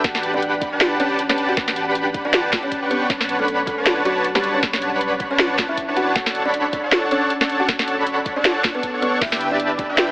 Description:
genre	future bass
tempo	157 BPM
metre	4/4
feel	swing 56% on 16ths, half-time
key	D major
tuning	A4 = 441 Hz
part	kalimba	melody	0.0-10.1 s	F#3 to F#5	-25 LUFS	equal	sidechain pumping, digital delay
part	dense compressed supersaw	riff	0.0-10.1 s	D4 to C#6	-20 LUFS	equal	vintage 12-bit sampler grit, sidechain pumping
part	warm 808-style bass	bass	0.0-10.1 s	D1 to B1	-41 LUFS	equal	sidechain pumping
part	electronic kick drum	drums	0.0-9.9 s	none	-32 LUFS	equal	none
part	trap drum kit	drums	0.0-10.1 s	crash cymbal, hi-hat, snare drum	-20 LUFS	equal	none
room	moderate huge ambient reverb, RT60 3.8 s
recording	heavily compressed radio sound, AM radio sound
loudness	-17 LUFS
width	side -22 dB against mid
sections	0.0-10.1 A section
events	none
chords	0.0 A13sus4; 3.1 Bm9; 6.2 Dmaj7; 9.2 G6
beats	| 0.04 0.42 0.81 1.19 | 1.57 1.95 2.33 2.72 | 3.10 3.48 3.86 4.25 | 4.63 5.01 5.39 5.78 | 6.16 6.54 6.92 7.30 | 7.69 8.07 8.45 8.83 | 9.21 9.60 9.98

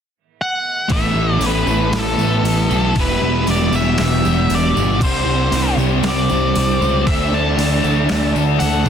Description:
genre	rock, shoegaze and dream pop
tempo	117 BPM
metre	4/4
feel	straight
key	unclear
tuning	A4 = 440 Hz
part	octave-fuzz lead guitar	melody	0.4-8.9 s	A4 to A5	-21 LUFS	equal	distortion, analog delay
part	evolving wavetable pad	sustained chords	1.8-8.9 s	G4 to E6	-27 LUFS	equal	phaser, built-in reverb
part	crunchy overdriven guitar	riff	0.9-8.9 s	C3 to A4	-23 LUFS	left 11 dB	lush chorus
part	crunchy overdriven guitar	riff	0.9-8.9 s	E2 to G4	-24 LUFS	right 10 dB	reverse reverb
part	overdriven electric guitar	riff	0.9-8.9 s	E2 to D4	-23 LUFS	right 1 dB	none
part	fuzz picked electric bass	bass	0.9-8.9 s	E1 to E2	-19 LUFS	equal	overdrive
part	detuned 8-bit digital drum machine	drums	0.9-8.9 s	crash cymbal, hi-hat, kick drum, snare drum	-24 LUFS	equal	overdrive
part	tambourine	percussion	0.9-8.9 s	none	-35 LUFS	right 11 dB	none
room	light reverb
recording	dense, heavily limited modern master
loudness	-14 LUFS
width	side -8 dB against mid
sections	0.9-8.9 A section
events	none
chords	0.0 N.C.; 0.9 Asus2; 3.0 Emadd9; 5.0 Csus2; 7.1 Dsus2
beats	0.38 | 0.90 1.41 1.92 2.44 | 2.95 3.46 3.98 4.49 | 5.00 5.52 6.03 6.54 | 7.06 7.57 8.09 8.60

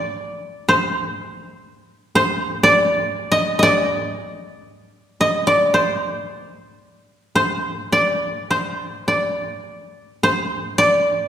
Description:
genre	japanese traditional, Japanese chamber music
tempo	50-60 BPM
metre	4/4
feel	rubato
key	unclear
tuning	A4 = 438 Hz
part	koto	solo	0.0-11.3 s	C5 to Eb5	-17 LUFS	equal	none
room	wet concert hall reverb, RT60 1.8 s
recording	recorded in a church or concert hall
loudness	-17 LUFS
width	side -10 dB against mid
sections	0.0-10.2 A section; 10.2-11.3 B section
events	none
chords	none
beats	0.63 | 1.64 2.65 3.67 4.71 | 5.76 6.83 7.92 9.07 | 10.23

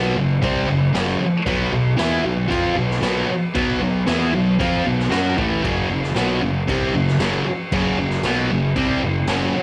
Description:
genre	garage rock duo or trio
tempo	115 BPM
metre	4/4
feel	straight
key	unclear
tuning	A4 = 440 Hz
part	thick fuzz guitar	riff	0.0-9.6 s	F#2 to F#4	-21 LUFS	equal	distortion, cassette tape
part	fuzz fingered electric bass	bass	0.0-9.6 s	F#1 to F#2	-30 LUFS	equal	overdrive, tube saturation
part	raw garage drum kit	drums	0.4-9.4 s	crash cymbal, kick drum, snare drum	-28 LUFS	equal	cassette tape
room	light reverb, studio reverb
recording	home recording on cassette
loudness	-20 LUFS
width	mono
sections	0.0-9.6 A section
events	none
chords	0.0 F#5; 1.5 B5; 5.6 F#5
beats	0.42 0.94 | 1.47 1.99 2.51 3.03 | 3.55 4.07 4.59 5.11 | 5.63 6.15 6.67 7.19 | 7.71 8.23 8.76 9.28

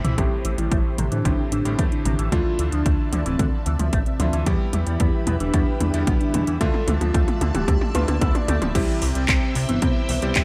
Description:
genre	italo disco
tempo	112 BPM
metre	4/4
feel	straight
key	D dorian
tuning	A4 = 442 Hz
part	string machine, full ensemble	sustained chords	0.0-10.4 s	C4 to B5	-35 LUFS	equal	phaser, ensemble chorus
part	electric guitar with an envelope filter	arpeggios	0.0-10.4 s	B2 to F4	-34 LUFS	equal	lush chorus, low-pass filter, digital delay
part	bright electric grand piano	stabs	0.0-10.4 s	A2 to E5	-34 LUFS	equal	low-pass filter
part	chorused synth bass	bass	0.0-10.4 s	D1 to A2	-26 LUFS	equal	none
part	house drum kit	drums	0.0-10.4 s	crash cymbal, handclaps, hi-hat, toms	-30 LUFS	equal	overdrive, gated reverb
part	soft octave-layered synth lead	melody	0.2-10.4 s	B3 to D5	-30 LUFS	equal	chorus, phaser, cassette tape, delay
part	electronic kick drum	drums	0.2-10.4 s	none	-25 LUFS	equal	overdrive
room	light reverb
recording	none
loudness	-22 LUFS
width	mono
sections	0.2-8.8 A section; 8.8-10.4 B section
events	drum fill 0.0, 0.2-8.8; filter sweep on clean electric guitar 0.2-8.8; filter sweep on string machine 0.2-8.8; filter sweep on soft synth lead 0.2-8.8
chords	0.2 Am7; 2.3 Dmadd9; 4.5 Em; 6.6 Dmadd9; 8.8 C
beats	| 0.18 0.71 1.25 1.79 | 2.32 2.86 3.39 3.93 | 4.46 5.00 5.54 6.07 | 6.61 7.14 7.68 8.21 | 8.75 9.29 9.82 10.36

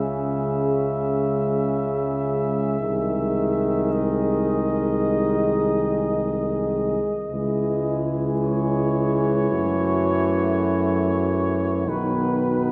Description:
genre	classical, hymn-like piece for brass band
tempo	53 BPM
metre	4/4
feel	rubato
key	unclear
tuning	A4 = 440 Hz
part	warm cornet	melody	0.0-12.7 s	B4 to E5	-31 LUFS	equal	none
part	mellow French horn section	second line	0.0-12.7 s	F#4 to G#4	-29 LUFS	equal	none
part	brilliant trombone	accompaniment	0.0-12.7 s	C#3 to E3	-29 LUFS	equal	none
part	warm trombone section	accompaniment	0.0-12.7 s	G#3 to B3	-32 LUFS	equal	none
part	mellow tuba	bass	0.0-12.7 s	B1 to F#2	-28 LUFS	equal	none
room	wet concert hall reverb, RT60 2.4 s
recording	recorded in a church or concert hall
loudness	-23 LUFS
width	mono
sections	0.0-12.7 A section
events	none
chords	0.0 C#m; 2.8 G#/B#; 7.3 C#m; 9.5 F#m7; 11.9 B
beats	0.54 1.68 | 2.80 3.92 5.05 6.18 | 7.30 8.40 9.51 10.66 | 11.88

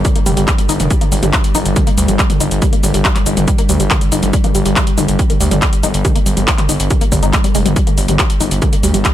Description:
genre	driving peak-time techno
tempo	140 BPM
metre	4/4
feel	straight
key	unclear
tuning	A4 = 440 Hz
part	tight sequenced synth	riff	0.0-9.1 s	G3 to Eb4	-22 LUFS	equal	chorus, tube saturation, sidechain pumping, ping-pong delay
part	gritty driven synth bass	bass	0.0-9.0 s	F1 to D2	-16 LUFS	equal	sidechain pumping
part	metallic inharmonic drone	drone	0.0-9.1 s	G2 to G3	-21 LUFS	left 1 dB	chorus, built-in reverb, sidechain pumping
part	electronic kick drum	drums	0.0-9.1 s	none	-15 LUFS	equal	overdrive
part	techno drum kit	drums	0.0-9.1 s	handclaps, hi-hat, shaker, toms	-18 LUFS	left 1 dB	none
room	little or no reverb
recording	none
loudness	-11 LUFS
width	side -12 dB against mid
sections	0.0-9.1 A section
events	none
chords	none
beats	0.05 0.48 | 0.91 1.33 1.76 2.19 | 2.62 3.05 3.48 3.90 | 4.33 4.76 5.19 5.62 | 6.05 6.48 6.91 7.33 | 7.76 8.19 8.62 9.05

